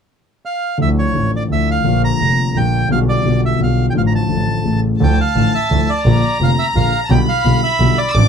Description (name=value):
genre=tango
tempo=172 BPM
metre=3/4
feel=rubato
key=unclear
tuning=A4 = 440 Hz
part: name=bandoneon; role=melody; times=0.5-8.3 s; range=C#5 to Bb5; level=-20 LUFS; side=right 3 dB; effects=none
part: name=warm concert grand piano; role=accompaniment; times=0.8-8.3 s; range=F1 to A4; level=-17 LUFS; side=left 3 dB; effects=none
part: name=warm double bass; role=bass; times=0.8-8.3 s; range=F1 to D2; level=-17 LUFS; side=right 2 dB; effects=none
part: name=warm chamber violin section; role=second line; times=5.0-8.3 s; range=A5 to E6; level=-20 LUFS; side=equal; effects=none
room=little or no reverb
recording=close, detailed microphones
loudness=-13 LUFS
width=side -7 dB against mid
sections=0.8-5.0 A section; 5.0-8.3 B section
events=none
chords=0.0 N.C.; 0.8 Dmadd9; 1.9 Bb; 2.9 G7/B; 3.9 Dm/A; 4.7 A; 5.0 Dmadd9; 6.1 Bb; 7.1 G7/B